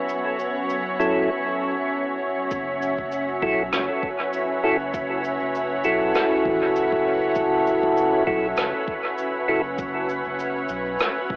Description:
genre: ambient dub.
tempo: 99 BPM.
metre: 4/4.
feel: swing 55% on 16ths.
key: F# minor.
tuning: A4 = 440 Hz.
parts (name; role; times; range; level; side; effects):
soft additive organ-like pad; sustained chords; 0.0-11.4 s; F#3 to E5; -25 LUFS; equal; ensemble chorus, built-in reverb, cassette tape.
wind-like tuned noise texture; texture; 0.0-1.3 s; B3 to B4; -35 LUFS; equal; built-in reverb, cassette tape.
cabasa and rim click; drums; 0.1-11.1 s; none; -29 LUFS; equal; dub echo.
percussive tonewheel organ; stabs; 1.0-9.6 s; F#3 to A4; -22 LUFS; equal; slow rotary speaker, low-pass filter, cassette tape, dub echo.
warm sub bass; bass; 2.5-11.4 s; F#1 to C#2; -40 LUFS; equal; none.
electronic kick drum; drums; 2.5-11.4 s; none; -34 LUFS; equal; overdrive.
room: light reverb, small room ambience.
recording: home recording on cassette, AM radio sound.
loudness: -20 LUFS.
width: side -27 dB against mid.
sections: 0.0-2.5 A section; 2.5-11.4 B section.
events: none.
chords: 0.0 F#m7.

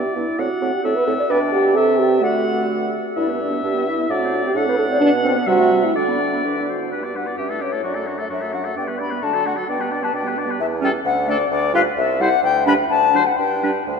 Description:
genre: quick classical-period movement for wind quintet.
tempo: 130 BPM.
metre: 2/4.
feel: straight.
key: G major.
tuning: A4 = 436 Hz.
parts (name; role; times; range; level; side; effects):
warm oboe; second line; 0.0-13.7 s; F#4 to F#5; -25 LUFS; left 3 dB; none.
mellow French horn; accompaniment; 0.0-13.7 s; F#3 to D5; -21 LUFS; right 1 dB; none.
mellow clarinet; accompaniment; 0.0-13.7 s; G3 to G4; -27 LUFS; right 5 dB; none.
mellow bassoon; bass; 0.0-14.0 s; C2 to D3; -26 LUFS; right 4 dB; none.
silver concert flute; melody; 0.2-13.9 s; B4 to B5; -23 LUFS; left 6 dB; none.
room: wet cathedral reverb, RT60 5.8 s.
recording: in a vast, echoing space.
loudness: -17 LUFS.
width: side -6 dB against mid.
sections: 0.0-6.9 A section; 6.9-14.0 B section.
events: none.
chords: 0.4 D7/A (rootless); 1.3 G/B; 1.8 C; 2.2 D; 3.2 G; 4.1 D7/A; 5.0 Bm; 5.5 Am7/C; 6.0 G/D; 6.4 D; 6.9 G; 7.4 A7/G; 7.8 D/F#; 8.8 G; 9.2 D; 9.7 G/B; 10.6 A7/E (rootless); 11.1 D; 11.5 G7(no3)/D; 12.0 C; 12.4 G/D; 12.9 D; 13.4 G5.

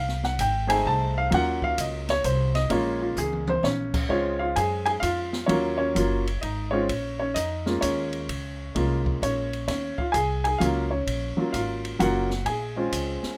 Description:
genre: jazz piano trio.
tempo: 129 BPM.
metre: 3/4.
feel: swing 66% on 8ths.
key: Bb minor.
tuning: A4 = 440 Hz.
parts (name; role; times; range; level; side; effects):
warm upright piano; melody; 0.0-13.4 s; Gb3 to A5; -27 LUFS; equal; none.
upright bass; bass; 0.0-13.3 s; Gb1 to Gb2; -32 LUFS; equal; none.
open jazz drum kit; drums; 0.1-13.3 s; crash cymbal, hi-hat, kick drum, ride cymbal, snare drum, toms; -36 LUFS; equal; none.
room: little or no reverb.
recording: none.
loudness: -26 LUFS.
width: mono.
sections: 0.0-4.1 A section; 4.1-13.4 B section.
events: upright piano solo 0.0-4.1; drum fill 3.2-3.6.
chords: 0.0 F7#9; 1.3 Ebm7; 2.7 Bbm7; 4.1 Dbmaj7; 5.5 Ebm7; 6.9 Bbm7; 9.7 Ebm7; 12.5 Bbm7.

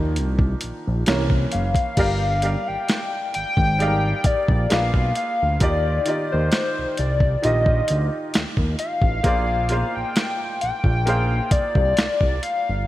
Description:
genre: R&B, neo-soul.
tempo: 66 BPM.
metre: 4/4.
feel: swing 54% on 16ths.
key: unclear.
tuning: A4 = 440 Hz.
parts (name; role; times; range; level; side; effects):
bright upright piano; accompaniment; 0.0-12.9 s; Eb3 to F5; -27 LUFS; right 1 dB; none.
fat analog bass; bass; 0.0-12.9 s; Gb1 to Eb2; -22 LUFS; equal; none.
dusty soul sampler-style drum kit; drums; 0.2-12.7 s; crash cymbal, hi-hat, kick drum, snare drum; -22 LUFS; equal; none.
hollow square lead; melody; 1.5-12.9 s; C5 to G5; -24 LUFS; left 2 dB; chorus.
room: light reverb, digital ambience.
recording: bright 1980s-style digital production, vinyl crackle.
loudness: -18 LUFS.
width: side -15 dB against mid.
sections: 0.0-2.0 A section; 2.0-12.9 B section.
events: upright piano solo 0.0-2.0.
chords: 0.0 Cm11; 1.1 C7b9; 2.0 Gm7; 4.7 Bb7b9; 5.6 Ebmaj7; 9.2 Bb9.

